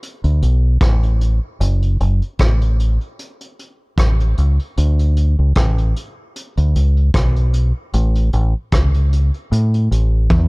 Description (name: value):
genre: lovers rock reggae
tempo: 76 BPM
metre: 4/4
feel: swing 54% on 16ths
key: D major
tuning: A4 = 442 Hz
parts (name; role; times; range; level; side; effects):
- vintage brush drum kit; drums; 0.0-10.5 s; hi-hat, kick drum, rim click, toms; -19 LUFS; equal; none
- deep dub fingered electric bass; bass; 0.2-10.5 s; F#1 to A2; -14 LUFS; equal; none
room: little or no reverb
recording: dark, warm production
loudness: -14 LUFS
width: side -31 dB against mid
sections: 0.0-10.5 A section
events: drum fill 10.3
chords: none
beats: 0.02 0.81 | 1.60 2.40 3.19 3.98 | 4.77 5.56 6.35 7.14 | 7.94 8.73 9.52 10.30